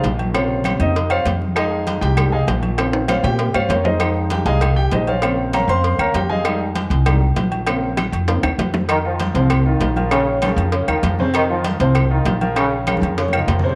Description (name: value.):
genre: latin, salsa.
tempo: 196 BPM.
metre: 4/4.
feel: straight.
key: unclear.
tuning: A4 = 442 Hz.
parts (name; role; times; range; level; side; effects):
warm concert grand piano; accompaniment; 0.0-13.8 s; C3 to C6; -23 LUFS; equal; none.
upright bass; bass; 0.0-13.8 s; Bb1 to Bb2; -22 LUFS; equal; none.
congas; percussion; 0.0-13.8 s; none; -29 LUFS; equal; none.
cowbell and bongos; percussion; 0.0-13.6 s; none; -30 LUFS; equal; none.
timbales and agogo bells; percussion; 0.0-13.6 s; none; -28 LUFS; equal; none.
claves; percussion; 0.3-13.5 s; none; -31 LUFS; equal; none.
dark trombone section; second line; 8.9-13.7 s; Db3 to F3; -26 LUFS; equal; none.
room: moderate spring reverb, RT60 1.6 s, small room ambience.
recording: none.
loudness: -18 LUFS.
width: mono.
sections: 0.0-8.9 A section; 8.9-13.8 B section.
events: grand piano solo 0.0-8.9; drum fill 2.8-4.0, 8.0-8.9, 12.9-13.8.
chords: 0.3 Bbmadd9; 1.6 Fm7; 2.8 Bbmadd9; 6.4 Fm7; 7.7 Bbmadd9; 8.9 F5; 10.1 Bbmadd9; 11.3 F5; 12.6 Bbmadd9.